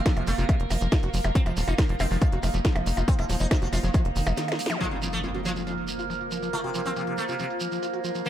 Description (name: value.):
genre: psychedelic trance.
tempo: 139 BPM.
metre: 4/4.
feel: straight.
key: unclear.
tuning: A4 = 442 Hz.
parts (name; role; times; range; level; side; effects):
overtone-sweeping drone; sustained chords; 0.0-8.3 s; Bb3 to Bb4; -34 LUFS; right 3 dB; chorus, built-in reverb, phaser, sidechain pumping.
warbly tape-like pad; texture; 0.0-8.3 s; F4 to F5; -35 LUFS; right 2 dB; chorus, built-in reverb, sidechain pumping.
sitar; melody; 0.1-8.3 s; F2 to F4; -35 LUFS; equal; phaser, sidechain pumping, dub echo.
screaming distorted acid line; riff; 0.1-8.3 s; Eb3 to Gb4; -34 LUFS; equal; distortion, chorus, auto-pan, sidechain pumping, tape echo.
electronic kick drum; drums; 0.1-4.0 s; none; -23 LUFS; equal; none.
techno drum kit; drums; 0.1-8.3 s; hi-hat, percussion blips, snare drum; -32 LUFS; equal; low-pass filter on hats, low-pass filter on perc, low-pass filter on snare, low-pass filter on room.
shekere; percussion; 0.1-8.3 s; none; -38 LUFS; right 4 dB; none.
tight sequencer bass; bass; 0.2-4.3 s; Eb1 to F1; -26 LUFS; equal; none.
resonant blip pluck; second line; 0.3-3.8 s; A3 to F4; -44 LUFS; left 2 dB; none.
zap and impact; sound effects; 4.7-6.5 s; none; -35 LUFS; equal; none.
room: digital ambience.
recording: none.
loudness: -23 LUFS.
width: side -11 dB against mid.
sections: 0.0-4.8 A section; 4.8-8.3 B section.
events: drop 0.0-4.8; break 4.4-4.8; drum fill 4.4-4.8; band accent 4.7; impact 4.8-6.5.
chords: 0.0 F5.